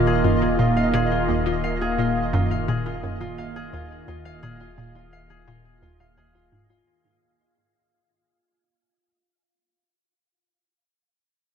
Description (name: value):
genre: ambient, sequencer-driven space music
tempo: 86 BPM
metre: 4/4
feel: straight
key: unclear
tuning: A4 = 442 Hz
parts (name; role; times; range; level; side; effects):
- phased analog pad; sustained chords; 0.0-6.9 s; Eb3 to F4; -25 LUFS; right 1 dB; phaser, chorus
- concert harp; arpeggios; 0.0-9.2 s; F4 to F5; -29 LUFS; moving between left 5 dB and right 1 dB; auto-pan, tape echo
- hollow square pluck; riff; 0.0-6.7 s; Eb2 to Bb2; -25 LUFS; equal; chorus, tape echo
- warm sub bass; bass; 0.0-6.8 s; Eb1; -33 LUFS; equal; none
- pulsing gated texture; texture; 0.0-6.9 s; Eb5; -33 LUFS; right 3 dB; chorus, built-in reverb
room: wet huge ambient reverb, RT60 8.4 s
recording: none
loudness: -20 LUFS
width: side -8 dB against mid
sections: 0.0-6.9 A section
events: fade-out 0.0-6.9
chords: 0.0 Eb5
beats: 0.59 | 1.29 1.99 2.69 3.38 | 4.08 4.78 5.48 6.17